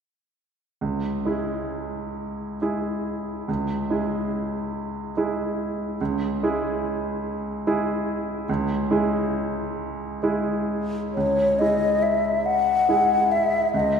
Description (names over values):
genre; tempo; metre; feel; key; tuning
classical, romantic duo for flute and grand piano; 41-49 BPM (dotted quarters); 6/8; rubato; C# minor; A4 = 440 Hz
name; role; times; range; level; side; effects
clear grand piano; accompaniment; 0.8-14.0 s; C#2 to G#4; -24 LUFS; right 1 dB; none
mellow hollow concert flute; melody; 11.1-14.0 s; C#5 to F#5; -19 LUFS; left 2 dB; none
room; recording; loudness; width
wet church reverb, RT60 3.3 s; none; -22 LUFS; side -6 dB against mid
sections
0.8-11.2 A section; 11.2-14.0 B section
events
none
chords
0.8 C#m